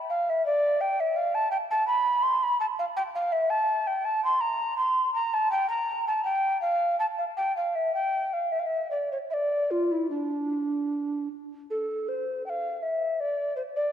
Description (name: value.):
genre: classical, baroque-style fantasia for unaccompanied recorder.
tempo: 74-85 BPM.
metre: 3/4.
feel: rubato.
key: D minor.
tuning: A4 = 435 Hz.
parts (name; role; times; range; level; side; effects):
mellow hollow tenor recorder; solo; 0.1-13.9 s; D4 to C6; -25 LUFS; equal; none.
room: wet concert hall reverb, RT60 2.5 s.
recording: none.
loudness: -24 LUFS.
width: side -9 dB against mid.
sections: 0.0-11.7 A section; 11.7-13.9 A section.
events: none.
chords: none.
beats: | 0.45 1.17 1.88 | 2.60 3.33 4.04 | 4.77 5.50 6.24 | 6.98 7.74 8.51 | 9.29 10.10 10.89 | 11.69 12.45 13.20.